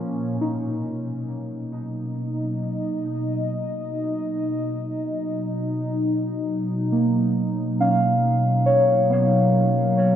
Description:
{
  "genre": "ambient",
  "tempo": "69 BPM",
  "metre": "4/4",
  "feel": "straight",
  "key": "B lydian",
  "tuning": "A4 = 441 Hz",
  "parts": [
    { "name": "warbly tape-like pad", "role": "sustained chords", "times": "0.0-10.2 s", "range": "A#2 to D#5", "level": "-23 LUFS", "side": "equal", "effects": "chorus, built-in reverb, phaser" },
    { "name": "muted felt-like synth keys", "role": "arpeggios", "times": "0.0-10.2 s", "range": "A#3 to E#5", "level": "-24 LUFS", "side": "right 1 dB", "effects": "chorus, dub echo" }
  ],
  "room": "wet echo chamber reverb, RT60 2.0 s",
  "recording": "echo-heavy mix",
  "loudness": "-21 LUFS",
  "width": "side -10 dB against mid",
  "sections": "0.4-10.2 A section",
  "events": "filter sweep on ambient pad 0.4-10.2",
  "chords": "0.4 B",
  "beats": "| 0.40 1.27 2.14 3.01 | 3.88 4.75 5.62 6.49 | 7.36 8.23 9.10 9.96"
}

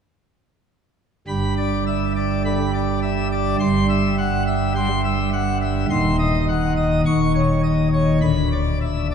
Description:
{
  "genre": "classical, organ toccata",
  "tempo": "104 BPM",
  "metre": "4/4",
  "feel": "straight",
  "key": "unclear",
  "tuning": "A4 = 440 Hz",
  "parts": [
    { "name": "pipe organ, plenum", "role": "solo", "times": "1.3-9.1 s", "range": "D1 to C#6", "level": "-18 LUFS", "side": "equal", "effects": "none" }
  ],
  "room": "wet church reverb, RT60 3.4 s",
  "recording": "heard from further back in the room",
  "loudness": "-18 LUFS",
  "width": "side -7 dB against mid",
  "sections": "1.3-9.1 A section",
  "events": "none",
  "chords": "1.3 G; 3.6 C/G; 5.9 Cm/Eb; 7.0 C#sus2/D#; 8.2 Bmadd11/D",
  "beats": "| 1.28 1.87 2.45 3.03 | 3.60 4.18 4.75 5.32 | 5.89 6.47 7.05 7.63 | 8.22 8.81"
}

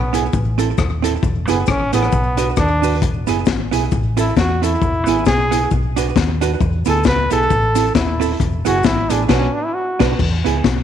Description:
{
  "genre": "ska",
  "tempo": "134 BPM",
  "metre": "4/4",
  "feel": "swing 57% on 8ths",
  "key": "E mixolydian",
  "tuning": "A4 = 441 Hz",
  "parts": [
    { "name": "brilliant trombone", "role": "melody", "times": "0.0-10.0 s", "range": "B3 to B4", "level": "-20 LUFS", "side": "equal", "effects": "none" },
    { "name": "hollow-body short-scale fingered electric bass", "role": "bass", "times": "0.0-10.8 s", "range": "D#1 to E2", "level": "-20 LUFS", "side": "equal", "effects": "none" },
    { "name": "hollow-body jazz guitar", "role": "accompaniment", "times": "0.1-10.7 s", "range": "B3 to B4", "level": "-22 LUFS", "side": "right 12 dB", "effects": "slapback echo" },
    { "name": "crunchy breakbeat drum kit", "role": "drums", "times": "0.1-10.8 s", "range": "crash cymbal, hi-hat, kick drum, rim click, snare drum", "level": "-19 LUFS", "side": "left 4 dB", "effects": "slapback echo" },
    { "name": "cabasa", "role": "percussion", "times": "0.1-9.2 s", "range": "none", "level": "-37 LUFS", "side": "left 12 dB", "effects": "slapback echo" }
  ],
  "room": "light reverb, small room ambience",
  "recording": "1960s-style stereo with parts hard left and right",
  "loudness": "-14 LUFS",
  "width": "side -9 dB against mid",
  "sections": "0.0-10.2 A section",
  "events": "trombone solo 0.0-10.2; band accent 9.3-10.2",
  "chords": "0.3 Am; 1.2 E; 2.1 Bm; 3.0 E; 3.9 Am; 4.8 E; 5.7 Bm; 6.6 E; 7.5 Am; 8.4 E; 9.3 Bm; 10.2 E",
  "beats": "0.33 0.78 | 1.23 1.68 2.13 2.57 | 3.02 3.47 3.92 4.37 | 4.82 5.26 5.71 6.16 | 6.61 7.06 7.50 7.95 | 8.40 8.85 9.30 9.75 | 10.20 10.64"
}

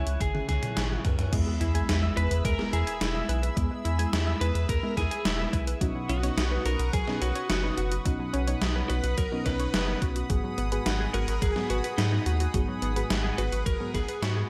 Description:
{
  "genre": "synthwave",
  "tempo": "107 BPM",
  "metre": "4/4",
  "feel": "straight",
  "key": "unclear",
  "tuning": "A4 = 440 Hz",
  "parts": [
    { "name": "lightly driven lead guitar", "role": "melody", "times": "0.0-14.5 s", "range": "D#4 to B4", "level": "-37 LUFS", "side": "equal", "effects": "digital delay" },
    { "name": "chorused pulse-width pad", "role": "sustained chords", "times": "0.0-14.5 s", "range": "E4 to F#6", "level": "-39 LUFS", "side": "equal", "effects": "sidechain pumping" },
    { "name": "FM electric piano with soft pad layer", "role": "stabs", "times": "0.0-14.5 s", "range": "G#2 to G#4", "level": "-38 LUFS", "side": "equal", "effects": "chorus, cassette tape" },
    { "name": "round analog bass", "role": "bass", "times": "0.0-14.4 s", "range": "E1 to G#2", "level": "-31 LUFS", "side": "equal", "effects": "tube saturation" },
    { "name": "gated 80s digital drum machine", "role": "drums", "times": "0.1-14.3 s", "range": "crash cymbal, hi-hat, snare drum, toms", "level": "-34 LUFS", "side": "equal", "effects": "gated reverb, gated reverb snare" },
    { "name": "electronic kick drum", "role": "drums", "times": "0.2-14.1 s", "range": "none", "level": "-32 LUFS", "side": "equal", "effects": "none" },
    { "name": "analog pluck", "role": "arpeggios", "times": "1.3-14.5 s", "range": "F#3 to G#5", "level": "-38 LUFS", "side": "equal", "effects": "chorus, tape echo" },
    { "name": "sub drop", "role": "sound effects", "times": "1.4-3.6 s", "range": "none", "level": "-38 LUFS", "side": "equal", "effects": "none" },
    { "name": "string machine, violins", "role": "second line", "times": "2.2-14.5 s", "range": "D#4 to B4", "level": "-44 LUFS", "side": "equal", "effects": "none" }
  ],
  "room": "light reverb, digital ambience",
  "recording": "none",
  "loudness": "-28 LUFS",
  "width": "mono",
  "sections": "0.0-1.3 A section; 1.3-14.5 B section",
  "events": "drum fill 0.2-1.3; impact 1.3-3.6; fade-out 13.3-14.5",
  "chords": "0.0 C#m; 1.3 E; 5.8 Badd9; 10.3 G#m7",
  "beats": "0.20 0.77 | 1.33 1.89 2.45 3.01 | 3.57 4.13 4.69 5.25 | 5.81 6.37 6.93 7.50 | 8.06 8.62 9.18 9.74 | 10.30 10.86 11.42 11.98 | 12.54 13.10 13.66 14.22"
}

